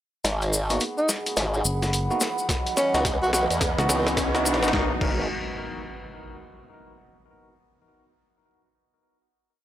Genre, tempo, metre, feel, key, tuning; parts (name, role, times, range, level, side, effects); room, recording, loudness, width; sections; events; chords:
glitch hop; 107 BPM; 4/4; swing 62% on 16ths; G# minor; A4 = 441 Hz
dark analog pad; sustained chords; 0.2-5.0 s; E3 to B5; -31 LUFS; right 2 dB; chorus, sidechain pumping
formant-sweep wobble bass; bass; 0.2-5.3 s; G#1 to E2; -26 LUFS; equal; chorus, tube saturation
boom bap sampler-style drum kit; drums; 0.2-5.2 s; crash cymbal, hi-hat, snare drum; -29 LUFS; equal; high-pass filter on snare, high-pass filter on hats, high-pass filter on cymbals
cabasa; percussion; 0.2-4.7 s; -30 LUFS; left 2 dB
riser and impact; sound effects; 1.9-7.0 s; -32 LUFS; left 1 dB
barky tine electric piano; stabs; 0.7-5.2 s; A#3 to A#4; -30 LUFS; equal; sidechain pumping, analog delay
breathy tenor saxophone; melody; 1.0-3.4 s; C#4 to F#4; -28 LUFS; equal; low-pass filter, analog delay
fingered electric bass; bass; 1.6-3.9 s; F#1 to C#2; -26 LUFS; equal
electronic kick drum; drums; 2.5-5.2 s; -29 LUFS; equal
light reverb, digital ambience; dry, gritty hardware recording, transformer saturation; -22 LUFS; side -12 dB against mid
0.2-4.7 build; 4.7-7.0 final chord
build-up 0.2-4.7; drum fill 0.2-4.7; filter sweep on tenor saxophone 0.2-4.7; riser 1.9-4.7
0.2 G#m7; 2.5 C#m11; 4.7 G#m7